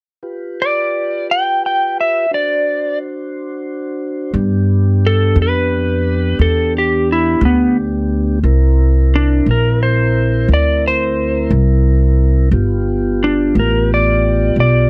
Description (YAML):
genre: blues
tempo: 59 BPM (dotted quarters)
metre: 12/8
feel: straight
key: G mixolydian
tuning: A4 = 440 Hz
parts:
  - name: mellow tonewheel organ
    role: sustained chords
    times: 0.2-14.9 s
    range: B3 to C5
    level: -23 LUFS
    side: equal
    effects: slow rotary speaker
  - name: clean lap steel guitar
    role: melody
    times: 0.6-14.9 s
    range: B3 to G5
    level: -18 LUFS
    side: equal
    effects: none
  - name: upright bass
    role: bass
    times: 4.3-14.9 s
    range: G1 to G2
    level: -16 LUFS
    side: equal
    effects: none
room: light reverb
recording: none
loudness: -15 LUFS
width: mono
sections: 0.2-4.3 A section; 4.3-14.9 B section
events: none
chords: 0.2 G7; 2.3 D7; 4.3 G7; 8.4 C7; 12.5 G7